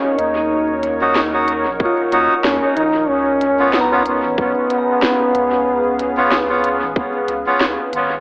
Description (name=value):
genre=ambient dub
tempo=93 BPM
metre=4/4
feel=swing 56% on 16ths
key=unclear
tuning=A4 = 440 Hz
part: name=mellow trombone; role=melody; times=0.0-7.6 s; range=Cb4 to Eb4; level=-18 LUFS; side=equal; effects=dub echo
part: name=deep dark ambient pad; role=sustained chords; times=0.0-8.2 s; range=Db4 to F5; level=-22 LUFS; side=equal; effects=chorus, built-in reverb
part: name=soft synth bell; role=arpeggios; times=0.0-8.2 s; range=F4 to Bb5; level=-27 LUFS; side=equal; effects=none
part: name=warm sub bass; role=bass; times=0.2-8.2 s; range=Ab1 to Eb2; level=-33 LUFS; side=equal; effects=tube saturation
part: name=organic electronic drum kit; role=drums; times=0.2-8.1 s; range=hi-hat, snare drum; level=-23 LUFS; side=equal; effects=dub echo
part: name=melodica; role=stabs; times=1.0-7.7 s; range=Cb4 to Gb4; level=-19 LUFS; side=equal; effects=dub echo
part: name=electronic kick drum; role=drums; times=1.8-7.1 s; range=none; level=-24 LUFS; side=equal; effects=none
room=wet spring reverb, RT60 1.8 s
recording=AM radio sound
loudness=-14 LUFS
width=side -28 dB against mid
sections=0.0-8.2 A section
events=none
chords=0.0 Ebm7; 3.1 Db7